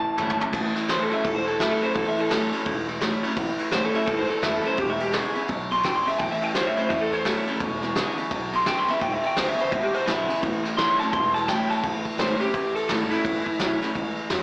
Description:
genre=rockabilly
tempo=170 BPM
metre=4/4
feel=swing 62% on 8ths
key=A major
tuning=A4 = 440 Hz
part: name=electric guitar through a small old amp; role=melody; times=0.0-13.8 s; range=E4 to C6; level=-28 LUFS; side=equal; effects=spring reverb, slapback echo, digital delay
part: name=picked steel-string acoustic guitar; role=accompaniment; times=0.0-14.4 s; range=E2 to E4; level=-34 LUFS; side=equal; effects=slapback echo
part: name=electric guitar through a small old amp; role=riff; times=0.0-14.4 s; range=E2 to F#3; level=-33 LUFS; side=equal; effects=slapback echo
part: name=upright bass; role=bass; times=0.0-14.4 s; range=E1 to G#2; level=-36 LUFS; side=equal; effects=none
part: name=soft brush drum kit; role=drums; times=0.2-14.4 s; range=crash cymbal, kick drum, ride cymbal, snare drum, toms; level=-31 LUFS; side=equal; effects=none
room=light reverb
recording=live gig heard through the venue's PA, club reverb, small speaker sound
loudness=-25 LUFS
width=mono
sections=0.5-11.8 A section; 11.8-14.4 B section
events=drum fill 0.0-0.5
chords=0.0 A; 4.8 E7; 6.2 A; 7.6 E7; 10.4 A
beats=0.18 | 0.54 0.89 1.25 1.60 | 1.95 2.31 2.66 3.01 | 3.37 3.72 4.07 4.43 | 4.78 5.13 5.49 5.84 | 6.19 6.55 6.90 7.25 | 7.61 7.96 8.31 8.67 | 9.02 9.37 9.72 10.08 | 10.43 10.78 11.13 11.48 | 11.84 12.19 12.54 12.89 | 13.25 13.60 13.95 14.30

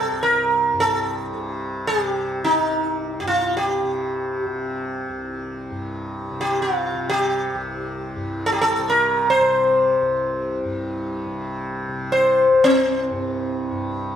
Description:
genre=indian classical, Hindustani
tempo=free time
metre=none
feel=none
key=C raga kafi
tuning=A4 = 439 Hz
part: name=sitar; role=melody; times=0.0-13.5 s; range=C4 to C5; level=-19 LUFS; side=equal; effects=slapback echo
part: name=tanpura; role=drone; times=0.0-14.2 s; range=C2 to C3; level=-28 LUFS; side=equal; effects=none
room=moderate recital hall reverb, RT60 1.4 s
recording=none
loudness=-19 LUFS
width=side -9 dB against mid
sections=0.0-13.7 A section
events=none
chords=none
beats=free time

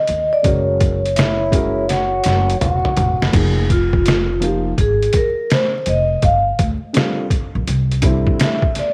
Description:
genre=hip hop, jazz-hop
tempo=83 BPM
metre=4/4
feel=swing 65% on 16ths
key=unclear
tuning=A4 = 440 Hz
part: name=vibraphone with soft mallets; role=melody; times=0.0-8.9 s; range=F4 to F5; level=-21 LUFS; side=equal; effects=none
part: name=upright bass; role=bass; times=0.1-8.2 s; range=Fb1 to Eb2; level=-22 LUFS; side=equal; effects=none
part: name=trip hop sampler-style drum kit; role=drums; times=0.1-8.9 s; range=crash cymbal, hi-hat, kick drum, snare drum, toms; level=-20 LUFS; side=equal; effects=none
part: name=dark grand piano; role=accompaniment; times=0.4-8.6 s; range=D3 to Bb4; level=-25 LUFS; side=equal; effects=none
part: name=trombone with cup mute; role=second line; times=1.2-3.3 s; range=Fb4 to Gb4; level=-23 LUFS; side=equal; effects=none
room=light reverb, small room ambience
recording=vinyl crackle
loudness=-17 LUFS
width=mono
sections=0.0-3.3 A section; 3.3-8.9 B section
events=drum fill 1.9-3.3; vibraphone solo 3.3-8.9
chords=0.4 Gb7; 3.3 Fm7; 6.2 G7(no3); 7.7 C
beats=| 0.45 1.17 1.89 2.61 | 3.34 4.06 4.78 5.50 | 6.23 6.95 7.67 8.40

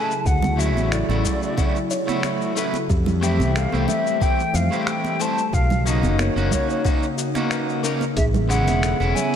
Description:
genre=sunset chillout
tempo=91 BPM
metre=4/4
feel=swing 53% on 16ths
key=unclear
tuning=A4 = 439 Hz
part: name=hollow concert flute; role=melody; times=0.0-9.4 s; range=C#5 to A5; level=-26 LUFS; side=left 1 dB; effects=vintage 12-bit sampler grit, digital delay
part: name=electric guitar at the edge of break-up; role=accompaniment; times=0.0-9.4 s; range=C#3 to C5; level=-26 LUFS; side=equal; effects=auto-pan, digital delay
part: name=airy breathy pad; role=sustained chords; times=0.0-9.4 s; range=C#3 to E5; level=-26 LUFS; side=equal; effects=chorus
part: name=buzzing kalimba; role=arpeggios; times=0.0-9.4 s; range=F#4 to G5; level=-30 LUFS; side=left 3 dB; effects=digital delay
part: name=dusty soul sampler-style drum kit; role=drums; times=0.1-9.4 s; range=finger snaps, hi-hat, shaker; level=-31 LUFS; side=left 3 dB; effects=small room ambience
part: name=fretless electric bass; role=bass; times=0.3-9.1 s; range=E1 to F2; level=-21 LUFS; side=equal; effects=none
part: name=electronic kick drum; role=drums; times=0.3-8.3 s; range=none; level=-22 LUFS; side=equal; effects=small room ambience
part: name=congas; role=percussion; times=0.4-9.3 s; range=none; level=-30 LUFS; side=right 4 dB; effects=none
room=light reverb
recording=dark, warm production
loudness=-18 LUFS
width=side -8 dB against mid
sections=0.0-9.4 A section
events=none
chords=0.0 Dmaj9; 2.9 Fmaj9; 5.5 Bmaj9; 8.2 Amaj9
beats=| 0.26 0.92 1.58 2.24 | 2.90 3.56 4.22 4.88 | 5.53 6.19 6.85 7.51 | 8.17 8.83

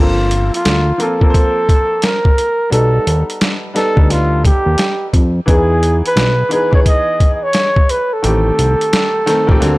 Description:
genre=hip hop, jazz-hop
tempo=87 BPM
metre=4/4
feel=swing 63% on 16ths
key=unclear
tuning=A4 = 440 Hz
part: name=breathy flugelhorn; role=melody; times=0.0-9.8 s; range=F4 to D#5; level=-16 LUFS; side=right 1 dB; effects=none
part: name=clear upright piano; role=accompaniment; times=0.0-9.8 s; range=D3 to C5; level=-20 LUFS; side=left 1 dB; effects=none
part: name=fat analog bass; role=bass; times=0.0-9.8 s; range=G1 to F2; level=-14 LUFS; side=equal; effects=none
part: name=boom bap sampler-style drum kit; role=drums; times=0.3-9.8 s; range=hi-hat, kick drum, snare drum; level=-14 LUFS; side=equal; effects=none
room=little or no reverb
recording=dry, gritty hardware recording, transformer saturation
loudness=-11 LUFS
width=side -20 dB against mid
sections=0.0-9.8 A section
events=none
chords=0.0 Gm11; 2.7 B7alt; 5.5 Emaj7; 8.2 Am7b5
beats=0.65 1.34 2.03 | 2.72 3.41 4.10 4.79 | 5.48 6.17 6.86 7.55 | 8.24 8.93 9.62

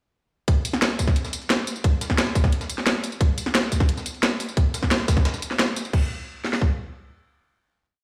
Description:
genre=drum and bass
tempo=176 BPM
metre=4/4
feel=straight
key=none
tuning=none
part: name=breakbeat sampler-style drum kit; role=drums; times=0.5-5.9 s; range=hi-hat, snare drum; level=-36 LUFS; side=equal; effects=none
part: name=drum and bass drum kit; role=drums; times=0.5-6.7 s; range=kick drum, snare drum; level=-22 LUFS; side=equal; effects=overdrive
part: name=drum and bass drum kit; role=drums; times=0.5-6.0 s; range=crash cymbal, hi-hat, snare drum, tambourine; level=-26 LUFS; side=equal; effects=overdrive
room=light reverb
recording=played on a big sound system in a bare room, stone room reverb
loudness=-23 LUFS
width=mono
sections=0.5-5.9 drop; 5.9-8.0 final hit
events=drop 0.5-5.9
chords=none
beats=| 0.48 0.82 1.16 1.50 | 1.84 2.18 2.52 2.87 | 3.21 3.55 3.89 4.23 | 4.57 4.91 5.25 5.59 | 5.93 6.28 6.62

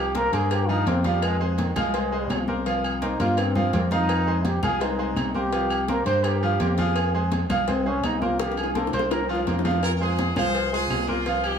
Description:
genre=latin, salsa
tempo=167 BPM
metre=4/4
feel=straight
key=F minor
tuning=A4 = 441 Hz
part: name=bright trombone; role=melody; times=0.0-9.4 s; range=C3 to C5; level=-27 LUFS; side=right 1 dB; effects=none
part: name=bright grand piano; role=accompaniment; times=0.0-11.6 s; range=F3 to F5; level=-28 LUFS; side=right 1 dB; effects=none
part: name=fingered electric bass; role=bass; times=0.0-11.6 s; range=C2 to G2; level=-26 LUFS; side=equal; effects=none
part: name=cowbell and bongos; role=percussion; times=0.1-11.4 s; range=none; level=-32 LUFS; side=left 5 dB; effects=none
part: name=congas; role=percussion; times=0.2-11.6 s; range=none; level=-30 LUFS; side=left 3 dB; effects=none
part: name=timbales and agogo bells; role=percussion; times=0.2-11.6 s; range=none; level=-33 LUFS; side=right 4 dB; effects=none
part: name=claves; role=percussion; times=0.5-11.6 s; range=none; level=-39 LUFS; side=left 3 dB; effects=none
part: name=brilliant horn section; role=melody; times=9.8-11.6 s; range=C4 to C5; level=-26 LUFS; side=equal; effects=slapback echo
room=light reverb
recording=small room ambience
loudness=-21 LUFS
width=side -7 dB against mid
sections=0.0-9.8 A section; 9.8-11.6 B section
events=trombone solo 0.0-9.8; drum fill 3.0-4.1, 8.4-9.8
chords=0.0 C7sus4; 1.2 Fm; 2.7 C7sus4; 4.1 Fm7; 5.5 C7sus4; 7.0 Fm; 8.4 C7sus4; 9.8 Fm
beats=0.15 0.51 0.87 | 1.23 1.58 1.94 2.30 | 2.66 3.02 3.38 3.73 | 4.09 4.45 4.81 5.17 | 5.53 5.89 6.25 6.60 | 6.96 7.32 7.68 8.04 | 8.40 8.76 9.11 9.47 | 9.83 10.19 10.55 10.90 | 11.26

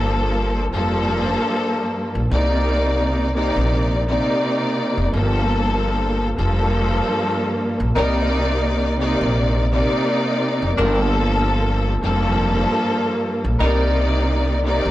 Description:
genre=hip hop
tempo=85 BPM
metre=4/4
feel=swing 54% on 16ths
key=C dorian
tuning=A4 = 440 Hz
part: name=clear studio string section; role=accompaniment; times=0.0-14.9 s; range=G2 to D5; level=-19 LUFS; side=equal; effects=high-pass filter, low-pass filter
part: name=upright bass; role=bass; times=0.0-14.9 s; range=F1 to C2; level=-20 LUFS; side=equal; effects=tube saturation
part: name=warm horn section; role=stabs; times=8.0-13.8 s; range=F3 to Bb4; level=-25 LUFS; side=left 1 dB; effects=high-pass filter, low-pass filter, tape echo
room=light reverb, small room ambience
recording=dry, gritty hardware recording, transformer saturation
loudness=-17 LUFS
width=side -15 dB against mid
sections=0.0-8.0 A section; 8.0-14.9 B section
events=none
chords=0.0 Gm9; 2.3 Cm9; 5.1 Gm9; 8.0 Cm9; 10.8 Gm9; 13.6 Cm9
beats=0.19 0.89 1.60 | 2.31 3.01 3.72 4.42 | 5.13 5.83 6.54 7.25 | 7.95 8.66 9.37 10.07 | 10.78 11.48 12.19 12.89 | 13.60 14.31

